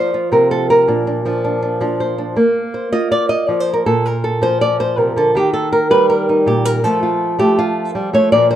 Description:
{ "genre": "flamenco", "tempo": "161 BPM", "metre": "4/4", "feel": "straight", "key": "Bb major", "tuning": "A4 = 440 Hz", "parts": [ { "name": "flamenco guitar", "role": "solo", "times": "0.0-8.6 s", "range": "Bb2 to Eb5", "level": "-13 LUFS", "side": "equal", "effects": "none" } ], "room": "light reverb", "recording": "dark, warm production", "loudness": "-13 LUFS", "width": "side -11 dB against mid", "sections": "0.0-2.4 A section; 2.4-8.6 B section", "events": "nylon-string guitar solo 2.4-8.6", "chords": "0.0 F5; 0.9 Bbadd9; 5.3 Eb; 6.8 F", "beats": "0.13 0.50 | 0.88 1.25 1.62 2.00 | 2.37 2.74 3.11 3.49 | 3.86 4.23 4.61 4.98 | 5.35 5.72 6.09 6.47 | 6.84 7.21 7.58 7.95 | 8.32" }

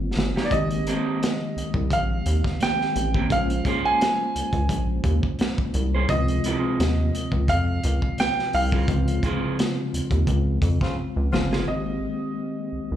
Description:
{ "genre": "R&B, neo-soul", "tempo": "86 BPM", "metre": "4/4", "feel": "swing 53% on 16ths", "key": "unclear", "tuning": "A4 = 441 Hz", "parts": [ { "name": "bright tine electric piano", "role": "accompaniment", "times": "0.0-13.0 s", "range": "C3 to C5", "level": "-28 LUFS", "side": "left 1 dB", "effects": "medium stereo tremolo, slapback echo" }, { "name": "rubbery square bass", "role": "bass", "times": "0.0-13.0 s", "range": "G1 to F2", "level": "-23 LUFS", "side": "equal", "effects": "none" }, { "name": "crunchy breakbeat drum kit", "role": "drums", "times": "0.2-11.7 s", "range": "hi-hat, kick drum, snare drum", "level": "-26 LUFS", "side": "equal", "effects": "none" }, { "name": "clear grand piano", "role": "melody", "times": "0.4-13.0 s", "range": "D5 to Ab5", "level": "-27 LUFS", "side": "right 2 dB", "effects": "slapback echo" }, { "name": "electric guitar through a small old amp", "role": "second line", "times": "0.4-11.6 s", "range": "Bb3 to C5", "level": "-30 LUFS", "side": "right 4 dB", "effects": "slapback echo" }, { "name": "mellow saxophone section", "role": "stabs", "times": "10.8-11.5 s", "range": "Db3 to F4", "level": "-33 LUFS", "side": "left 2 dB", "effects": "slapback echo" } ], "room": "small room ambience", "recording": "live gig heard through the venue's PA, club reverb", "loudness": "-21 LUFS", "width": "side -11 dB against mid", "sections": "0.5-11.7 A section; 11.7-13.0 B section", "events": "drum fill 0.0-0.5, 11.0-11.7; band accent 8.9-11.7", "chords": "0.0 F9sus4; 0.5 Abmaj9; 3.3 Bbm9; 6.1 Dbmaj7; 11.7 Abmaj9", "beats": "| 0.51 1.21 1.90 2.60 | 3.30 4.00 4.70 5.39 | 6.09 6.79 7.49 8.18 | 8.88 9.58 10.28 10.97 | 11.67 12.37" }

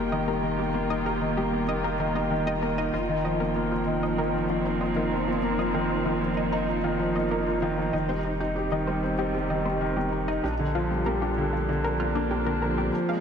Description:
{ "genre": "piano and strings electronica", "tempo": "96 BPM", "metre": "4/4", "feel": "straight", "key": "unclear", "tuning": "A4 = 440 Hz", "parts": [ { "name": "muted string quartet", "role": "sustained chords", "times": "0.0-13.2 s", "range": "Bb2 to G5", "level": "-33 LUFS", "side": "right 3 dB", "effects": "low-pass filter" }, { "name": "felt-muted upright piano", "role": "riff", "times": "0.0-13.2 s", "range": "D3 to G4", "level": "-26 LUFS", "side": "equal", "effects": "tape echo" }, { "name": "warm sub bass", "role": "bass", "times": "0.0-12.9 s", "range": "F1 to Bb1", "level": "-34 LUFS", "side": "equal", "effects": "none" }, { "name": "analog pluck", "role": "arpeggios", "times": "0.1-13.1 s", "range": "D4 to F5", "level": "-34 LUFS", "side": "left 1 dB", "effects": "chorus, tape echo" }, { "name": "riser", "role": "sound effects", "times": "12.9-13.2 s", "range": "none", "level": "barely audible", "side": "none", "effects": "none" } ], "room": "moderate lush hall reverb, RT60 2.5 s", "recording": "dark, warm production", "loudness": "-24 LUFS", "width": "side -7 dB against mid", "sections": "0.0-12.9 A section", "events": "none", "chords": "0.0 Eb/F; 7.9 Cm/F; 10.4 Bb6", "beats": "| 0.43 1.06 1.68 2.31 | 2.93 3.56 4.18 4.81 | 5.43 6.06 6.68 7.31 | 7.93 8.56 9.18 9.81 | 10.43 11.06 11.68 12.31 | 12.93" }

